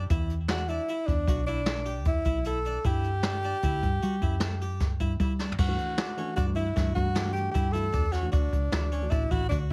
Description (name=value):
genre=progressive instrumental, band music in an uneven meter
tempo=153 BPM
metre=7/4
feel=straight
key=G lydian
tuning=A4 = 436 Hz
part: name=woody fretless electric bass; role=bass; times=0.0-9.7 s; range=A1 to G3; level=-32 LUFS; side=equal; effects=none
part: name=harpsichord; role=arpeggios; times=0.1-9.7 s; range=C#4 to A4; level=-41 LUFS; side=equal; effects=delay
part: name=jazz brush drum kit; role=drums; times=0.1-9.7 s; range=crash cymbal, hi-hat, kick drum, snare drum, toms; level=-31 LUFS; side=equal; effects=none
part: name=warm tenor saxophone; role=melody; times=0.5-9.7 s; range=D4 to A4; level=-34 LUFS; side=equal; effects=delay
part: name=barky tine electric piano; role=accompaniment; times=5.7-9.5 s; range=E3 to F#4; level=-39 LUFS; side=equal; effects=overdrive
room=light reverb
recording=none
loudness=-28 LUFS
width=mono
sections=0.0-5.6 A section; 5.6-9.7 B section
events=drum fill 5.4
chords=0.1 Em7; 2.8 G5; 5.6 Gsus2; 8.3 Dmaj7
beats=| 0.10 0.49 0.88 1.27 1.67 2.06 2.45 | 2.85 3.24 3.63 4.02 4.42 4.81 5.20 | 5.59 5.99 6.38 6.77 7.16 7.55 7.95 | 8.34 8.73 9.12 9.52